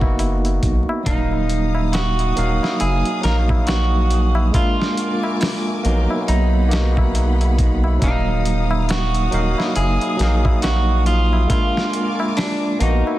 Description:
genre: trip hop.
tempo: 69 BPM.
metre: 4/4.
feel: swing 59% on 16ths.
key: Eb harmonic minor.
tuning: A4 = 440 Hz.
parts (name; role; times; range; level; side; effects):
overdriven tine electric piano; accompaniment; 0.0-13.2 s; Gb3 to F5; -22 LUFS; equal; harmonic tremolo, vintage 12-bit sampler grit.
round analog bass; bass; 0.0-13.0 s; Eb1 to B1; -18 LUFS; equal; none.
dusty soul sampler-style drum kit; drums; 0.0-13.0 s; hi-hat, kick drum, snare drum; -22 LUFS; equal; studio reverb.
tabla; percussion; 0.0-13.2 s; none; -31 LUFS; left 1 dB; none.
electric guitar at the edge of break-up; melody; 1.1-13.2 s; D4 to Bb4; -24 LUFS; right 2 dB; tape echo.
clear symphonic string section; sustained chords; 1.1-13.2 s; Gb3 to Eb6; -31 LUFS; left 2 dB; vintage 12-bit sampler grit.
room: digital ambience.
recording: dense, heavily limited modern master, vinyl crackle.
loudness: -16 LUFS.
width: side -15 dB against mid.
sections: 0.0-13.2 A section.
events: none.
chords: 0.0 Bmaj7/F#; 1.1 Ebmadd9; 4.5 Bb7; 6.3 Abm7/Cb; 8.0 Ebmadd9; 11.5 Bb7.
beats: 0.19 | 1.06 1.93 2.80 3.67 | 4.54 5.41 6.28 7.15 | 8.02 8.89 9.76 10.63 | 11.50 12.37.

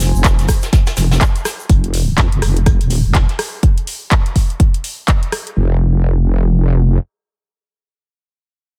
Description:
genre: bass house.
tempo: 124 BPM.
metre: 4/4.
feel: swing 60% on 16ths.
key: F minor.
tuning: A4 = 440 Hz.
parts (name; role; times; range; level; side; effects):
wobble bass; bass; 0.0-7.0 s; Eb1 to F2; -16 LUFS; equal; chorus, overdrive, sidechain pumping.
garage drum kit; drums; 0.0-5.5 s; handclaps, hi-hat, rim click; -24 LUFS; equal; none.
vintage brush drum kit; drums; 0.0-3.5 s; hi-hat, snare drum; -30 LUFS; equal; sidechain pumping on hats, high-pass filter on hats, high-pass filter on snare, high-pass filter on room.
egg shaker; percussion; 0.0-1.7 s; none; -32 LUFS; equal; none.
warbly tape-like pad; texture; 0.0-1.7 s; F4 to Ab5; -36 LUFS; equal; chorus, built-in reverb, sidechain pumping.
electronic kick drum; drums; 0.2-5.2 s; none; -15 LUFS; equal; none.
room: small room reverb.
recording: none.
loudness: -15 LUFS.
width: mono.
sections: 0.0-5.6 A section; 5.6-8.8 B section.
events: fade-out on ambient pad 0.0-1.7; filter sweep on wobble bass 0.0-3.6.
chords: 0.0 Fm; 5.6 N.C..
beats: 0.24 0.73 1.21 | 1.70 2.18 2.66 3.15 | 3.63 4.11 4.60 5.08 | 5.57 6.05 6.53.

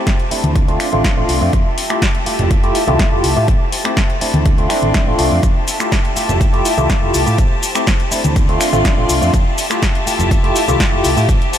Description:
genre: filtered disco house.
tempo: 123 BPM.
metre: 4/4.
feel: straight.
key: F major.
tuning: A4 = 439 Hz.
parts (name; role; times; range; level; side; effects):
barky tine electric piano; accompaniment; 0.0-11.3 s; A3 to G4; -18 LUFS; equal; phaser, vintage 12-bit sampler grit, sidechain pumping, low-pass filter.
bright studio violin section; sustained chords; 0.0-11.6 s; F4 to C6; -23 LUFS; left 2 dB; sidechain pumping, low-pass filter.
electronic kick drum; drums; 0.1-11.4 s; none; -16 LUFS; equal; none.
punchy analog drum machine; drums; 0.1-11.6 s; finger snaps, hi-hat, shaker, snare drum; -21 LUFS; left 1 dB; sidechain pumping on hats, sidechain pumping on cymbals, sidechain pumping on perc.
tambourine and congas; percussion; 0.1-11.6 s; none; -27 LUFS; left 2 dB; none.
hollow-body short-scale fingered electric bass; bass; 0.3-11.4 s; F1 to A2; -19 LUFS; equal; sidechain pumping, low-pass filter.
room: light reverb, digital ambience.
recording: none.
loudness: -12 LUFS.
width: side -10 dB against mid.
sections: 0.0-11.6 A section.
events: filter sweep 0.0-11.6.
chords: 0.0 Am7; 0.6 Dm7; 1.5 Fmaj9; 3.5 Am7; 4.5 Dm7; 5.4 Fmaj9; 7.4 Am7; 8.4 Dm7; 9.3 Fmaj9.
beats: 0.07 0.56 1.04 | 1.53 2.02 2.51 3.00 | 3.48 3.97 4.46 4.95 | 5.43 5.92 6.41 6.90 | 7.38 7.87 8.36 8.85 | 9.34 9.82 10.31 10.80 | 11.29.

